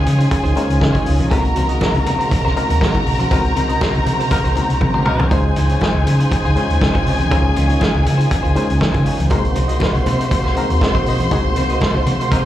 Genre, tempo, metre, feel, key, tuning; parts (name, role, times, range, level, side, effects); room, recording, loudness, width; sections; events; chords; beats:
disco; 120 BPM; 4/4; straight; Db major; A4 = 440 Hz
warm studio string section; second line; 0.0-12.5 s; Ab4 to C6; -22 LUFS; left 1 dB; slapback echo
barky reed electric piano; accompaniment; 0.0-12.5 s; Ab3 to F5; -25 LUFS; left 4 dB; overdrive, fast tremolo, slapback echo
tonewheel organ; sustained chords; 0.0-12.5 s; C3 to C5; -24 LUFS; right 1 dB; overdrive, fast rotary speaker
hollow-body short-scale fingered electric bass; bass; 0.0-12.4 s; Bb1 to Db3; -18 LUFS; equal
electric guitar at the edge of break-up; accompaniment; 0.1-12.4 s; Eb4 to Eb5; -28 LUFS; right 7 dB; slapback echo
vintage drum kit; drums; 0.1-12.4 s; hi-hat, kick drum, snare drum, toms; -20 LUFS; equal
congas; percussion; 0.1-12.2 s; -28 LUFS; left 3 dB
warm horn section; stabs; 4.3-5.3, 12.3-12.4 s; Gb3 to Bb4; -23 LUFS; left 2 dB; slapback echo
light reverb; live gig heard through the venue's PA, club ambience; -14 LUFS; side -12 dB against mid
0.0-12.5 A section
reed electric piano fill 0.3-1.3; band accent 3.3-5.3, 11.3-12.5; drum fill 4.8-5.3
0.0 Dbmaj9; 1.3 Ab9; 5.3 Dbmaj9; 9.3 Ab9
0.32 0.81 | 1.31 1.81 2.31 2.81 | 3.31 3.81 4.31 4.81 | 5.31 5.81 6.31 6.81 | 7.31 7.81 8.31 8.81 | 9.31 9.81 10.32 10.82 | 11.32 11.82 12.32